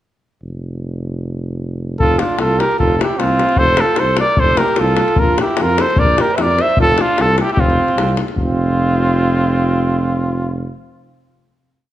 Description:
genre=balkan folk, Balkan brass band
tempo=151 BPM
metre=2/4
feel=swing 54% on 16ths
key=F major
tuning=A4 = 439 Hz
part: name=dark tuba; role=bass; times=0.4-10.7 s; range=F1 to F2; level=-19 LUFS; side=right 1 dB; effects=none
part: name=mellow cornet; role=melody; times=2.0-10.7 s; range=F4 to E5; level=-16 LUFS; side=equal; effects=none
part: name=bright alto saxophone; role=second line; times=2.0-10.7 s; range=C4 to C5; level=-21 LUFS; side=right 3 dB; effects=none
part: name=davul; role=percussion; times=2.0-8.6 s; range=none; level=-18 LUFS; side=left 2 dB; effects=none
room=moderate recital hall reverb, RT60 1.5 s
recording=none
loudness=-13 LUFS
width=side -13 dB against mid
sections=0.4-2.0 intro; 2.0-8.4 A section; 8.4-9.9 final chord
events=none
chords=0.4 N.C.; 2.0 F; 5.2 Bb5; 6.8 F5

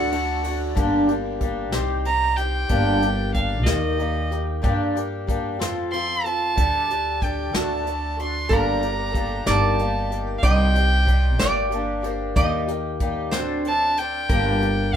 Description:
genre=acoustic folk duo or small band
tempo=62 BPM (dotted quarters)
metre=6/8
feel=straight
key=G minor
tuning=A4 = 440 Hz
part: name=warm fiddle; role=melody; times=0.0-15.0 s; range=Eb5 to C6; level=-24 LUFS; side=right 2 dB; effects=none
part: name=lap resonator guitar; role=second line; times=0.0-0.4, 8.5-15.0 s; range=A4 to Eb5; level=-27 LUFS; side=right 4 dB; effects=none
part: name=fingerpicked twelve-string acoustic guitar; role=accompaniment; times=0.0-15.0 s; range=G2 to A4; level=-25 LUFS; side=left 2 dB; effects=none
part: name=upright bass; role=bass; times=0.0-15.0 s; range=G1 to G2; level=-25 LUFS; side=equal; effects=none
part: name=soft brush drum kit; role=drums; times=0.1-15.0 s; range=hi-hat, kick drum, ride cymbal, snare drum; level=-26 LUFS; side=equal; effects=none
room=light reverb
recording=minimal, uncompressed stereo recording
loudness=-20 LUFS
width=side -9 dB against mid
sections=0.8-15.0 A section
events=none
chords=0.0 D; 0.8 Gm; 1.7 Cm; 2.7 Gm; 3.7 Eb; 4.6 Gm; 5.6 F; 6.6 Dsus4; 7.5 D; 8.5 Gm; 9.5 Eb/G; 10.4 Cm; 11.4 Gm; 12.4 Eb; 13.3 D7; 14.3 Gm

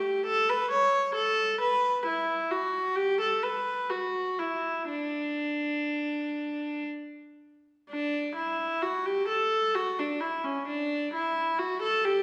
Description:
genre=classical, baroque-style suite movement for unaccompanied viola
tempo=58-68 BPM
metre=3/4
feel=rubato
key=D major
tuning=A4 = 440 Hz
part: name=warm viola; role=solo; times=0.0-12.2 s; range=C#4 to C#5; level=-29 LUFS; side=equal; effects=none
room=wet recital hall reverb, RT60 1.4 s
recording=heard from further back in the room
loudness=-29 LUFS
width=mono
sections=0.0-7.9 A section; 7.9-12.2 A section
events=none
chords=none

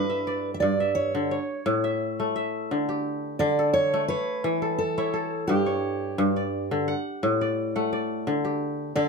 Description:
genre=west african traditional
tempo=86 BPM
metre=4/4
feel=straight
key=D major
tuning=A4 = 440 Hz
part: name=fingerpicked steel-string acoustic guitar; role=melody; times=0.0-9.1 s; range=G4 to E5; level=-27 LUFS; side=right 2 dB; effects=none
part: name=kora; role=arpeggios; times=0.0-9.1 s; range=G2 to F#5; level=-25 LUFS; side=left 1 dB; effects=none
room=light reverb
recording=close, detailed microphones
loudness=-24 LUFS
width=side -4 dB against mid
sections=0.0-2.7 A section; 2.7-9.1 A section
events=none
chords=0.0 G; 1.3 A; 2.7 D5; 4.1 E5; 5.5 G5; 6.9 Dadd11/A; 8.3 D5

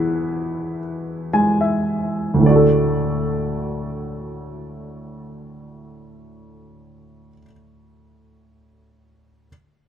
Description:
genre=classical, lyrical solo piano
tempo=free time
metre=none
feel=none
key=D lydian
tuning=A4 = 440 Hz
part: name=clear baby grand piano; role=solo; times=0.0-9.5 s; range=D2 to G#5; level=-18 LUFS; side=right 1 dB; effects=none
room=moderate huge ambient reverb, RT60 5.6 s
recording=dark, warm production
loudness=-17 LUFS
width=side -9 dB against mid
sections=0.0-2.4 A section; 2.4-7.0 B section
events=slowing down 0.0-2.4; grand piano fill 0.8-2.4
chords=0.0 E; 2.4 D

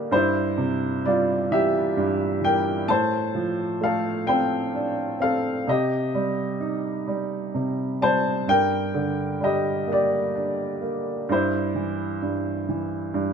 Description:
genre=acoustic folk-pop ballad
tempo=43 BPM (dotted quarters)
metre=6/8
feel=straight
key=unclear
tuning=A4 = 439 Hz
part: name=warm upright piano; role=solo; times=0.0-13.3 s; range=G2 to A5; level=-22 LUFS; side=equal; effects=none
room=light reverb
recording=minimal, uncompressed stereo recording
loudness=-22 LUFS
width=side -6 dB against mid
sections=0.0-13.3 A section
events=none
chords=0.1 C/G; 2.9 F6/A; 5.7 Cm; 8.5 Gm; 11.3 C/G

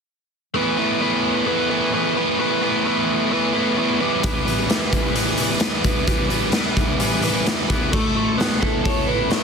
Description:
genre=indie rock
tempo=130 BPM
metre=4/4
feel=straight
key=unclear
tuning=A4 = 439 Hz
part: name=biting overdriven guitar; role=riff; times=0.5-9.4 s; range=E3 to B4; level=-19 LUFS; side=equal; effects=none
part: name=raw garage drum kit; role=drums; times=4.2-9.4 s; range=crash cymbal, hi-hat, kick drum, snare drum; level=-20 LUFS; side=equal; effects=none
part: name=electric guitar through a small old amp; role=melody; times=8.6-9.4 s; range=A4 to C#5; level=-24 LUFS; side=right 2 dB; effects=phaser
room=moderate spring reverb, RT60 1.3 s, small room ambience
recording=dense, heavily limited modern master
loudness=-18 LUFS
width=side -5 dB against mid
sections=0.6-7.9 A section; 7.9-9.4 B section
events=none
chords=0.6 Asus2; 4.0 Em; 7.9 Asus2

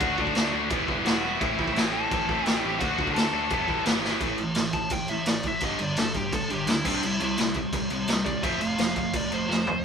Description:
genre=punk rock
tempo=171 BPM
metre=4/4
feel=straight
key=A dorian, A minor from 4.2 s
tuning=A4 = 440 Hz
part: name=high-gain lead guitar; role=melody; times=0.0-9.8 s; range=D4 to A5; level=-30 LUFS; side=left 1 dB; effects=distortion
part: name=distorted electric guitar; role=riff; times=0.0-9.8 s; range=G2 to F#4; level=-27 LUFS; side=equal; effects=distortion
part: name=picked electric bass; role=bass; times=0.0-9.8 s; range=E1 to D2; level=-38 LUFS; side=equal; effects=none
part: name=raw garage drum kit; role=drums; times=0.0-9.7 s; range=crash cymbal, kick drum, snare drum, toms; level=-27 LUFS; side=equal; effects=none
room=light reverb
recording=band playing live in one room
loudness=-23 LUFS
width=side -6 dB against mid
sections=0.0-4.2 A section; 4.2-9.8 B section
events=drum fill 4.0, 9.5-9.8; lead electric guitar solo 4.2-9.8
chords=0.0 D; 0.7 Em; 1.4 Am; 2.8 D; 3.5 Em; 4.2 A5; 5.6 G5; 6.9 C; 8.4 F

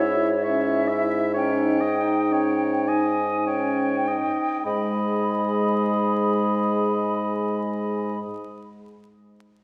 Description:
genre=classical, slow romantic movement for wind quintet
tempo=47-67 BPM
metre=3/4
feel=rubato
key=G# minor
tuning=A4 = 441 Hz
part: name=hollow concert flute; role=melody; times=0.0-8.2 s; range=C#5 to B5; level=-30 LUFS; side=equal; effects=none
part: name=warm oboe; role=second line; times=0.0-8.2 s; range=C#5 to E5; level=-32 LUFS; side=equal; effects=none
part: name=clear French horn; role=accompaniment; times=0.0-8.2 s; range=G#3 to E4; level=-30 LUFS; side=equal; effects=none
part: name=clear clarinet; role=accompaniment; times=0.0-8.2 s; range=C#4 to G#4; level=-32 LUFS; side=equal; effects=none
part: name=mellow bassoon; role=bass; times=0.0-8.2 s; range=G#2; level=-29 LUFS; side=equal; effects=none
room=wet concert hall reverb, RT60 2.2 s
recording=heard from further back in the room, vinyl crackle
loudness=-23 LUFS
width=mono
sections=0.0-4.7 A section; 4.7-7.9 B section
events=slowing down 0.0-4.7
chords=0.0 C#m/G#; 1.3 D#7/G#; 4.7 G#m

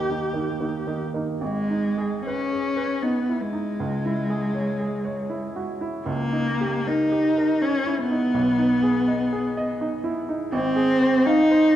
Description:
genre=classical, romantic duo for cello and grand piano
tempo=68-86 BPM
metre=3/4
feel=rubato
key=G# minor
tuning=A4 = 440 Hz
part: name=warm cello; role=melody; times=0.0-11.8 s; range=G#3 to G4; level=-22 LUFS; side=equal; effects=none
part: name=clear baby grand piano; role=accompaniment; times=0.0-11.8 s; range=G#1 to F5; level=-27 LUFS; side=right 2 dB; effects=none
room=moderate scoring stage reverb, RT60 1.6 s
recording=dark, warm production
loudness=-21 LUFS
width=side -12 dB against mid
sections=0.0-1.4 A section; 1.4-11.8 B section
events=none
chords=0.0 D#; 1.4 G#m; 3.8 C#m; 6.1 D#7/C#; 8.3 G#m/B; 10.5 Fm/Ab

